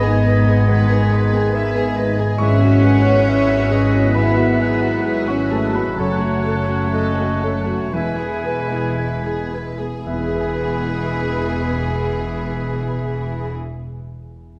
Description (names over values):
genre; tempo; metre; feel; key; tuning
cinematic, emotional film score for orchestra; 55-71 BPM; 4/4; rubato; E major; A4 = 441 Hz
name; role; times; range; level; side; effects
dark studio violin section; melody; 0.0-13.5 s; F#4 to B4; -30 LUFS; equal; none
bright clarinet; second line; 0.0-13.5 s; G#4 to G#5; -32 LUFS; equal; none
dark studio violin section; second line; 0.0-13.5 s; E4 to C#5; -32 LUFS; equal; none
large flute ensemble; second line; 0.0-13.5 s; B5 to G#6; -35 LUFS; equal; none
warm oboe; second line; 0.0-13.5 s; B4 to E5; -32 LUFS; equal; none
dark symphonic viola section; accompaniment; 0.0-13.5 s; F#3 to G#4; -32 LUFS; equal; none
warm grand piano; accompaniment; 0.0-14.6 s; E2 to C#6; -29 LUFS; equal; none
warm French horn section; sustained chords; 0.0-13.5 s; D#3 to E4; -29 LUFS; equal; none
warm symphonic cello section; bass; 0.0-13.5 s; E3 to C#4; -26 LUFS; equal; none
warm symphonic double bass section; bass; 0.0-13.5 s; E1 to G#1; -23 LUFS; equal; none
room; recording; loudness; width
wet scoring stage reverb, RT60 1.8 s; none; -18 LUFS; mono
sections
0.0-10.1 A section; 10.1-14.3 B section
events
slowing down 0.7-10.1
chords
0.0 G#m; 2.4 Eadd9/G#; 6.0 F#m; 7.9 E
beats
0.68 1.54 | 2.40 3.27 4.16 5.06 | 5.98 6.94 7.94 8.98 | 10.06 11.13 12.20 13.27